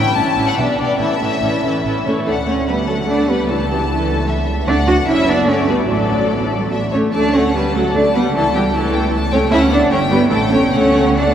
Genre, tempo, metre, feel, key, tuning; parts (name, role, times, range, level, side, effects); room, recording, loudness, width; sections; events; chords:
quick classical-period movement for string orchestra; 137-156 BPM; 3/4; rubato; D major; A4 = 436 Hz
clear studio violin section; melody; 0.0-11.3 s; D5 to A5; -22 LUFS; left 4 dB
rich studio violin section; second line; 0.0-11.3 s; E4 to F#5; -22 LUFS; left 1 dB
rich studio viola section; accompaniment; 0.0-11.3 s; E3 to D4; -19 LUFS; equal
rich symphonic double bass section; bass; 0.0-11.3 s; F#1 to D2; -22 LUFS; right 2 dB
warm studio cello section; bass; 0.0-11.3 s; A2 to F#4; -18 LUFS; right 2 dB
wet cathedral reverb, RT60 6.8 s; -14 LUFS; side -9 dB against mid
0.0-2.3 A section; 2.3-11.3 B section
0.0 A; 0.6 G/B; 1.0 A; 2.3 D; 3.5 A/C#; 4.7 D; 5.5 G; 5.9 D/A; 6.7 A; 7.1 D; 8.3 A7/C#; 9.5 D; 9.9 G; 10.3 A7; 10.7 D